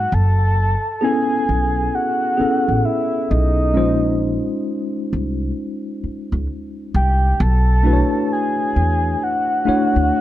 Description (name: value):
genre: R&B, neo-soul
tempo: 66 BPM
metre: 4/4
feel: swing 63% on 16ths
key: unclear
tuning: A4 = 440 Hz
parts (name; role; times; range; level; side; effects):
- soft octave-layered synth lead; melody; 0.0-10.2 s; D#5 to A5; -21 LUFS; equal; chorus
- tine electric piano; accompaniment; 0.0-10.2 s; G#3 to C#5; -21 LUFS; left 1 dB; overdrive, fast stereo tremolo
- upright bass; bass; 0.0-10.1 s; F#1 to E2; -18 LUFS; equal; none
room: light reverb, studio reverb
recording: dark, warm production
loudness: -16 LUFS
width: side -13 dB against mid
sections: 0.1-10.2 A section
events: none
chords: 0.1 F#m11; 3.7 A#m11; 7.4 Bm11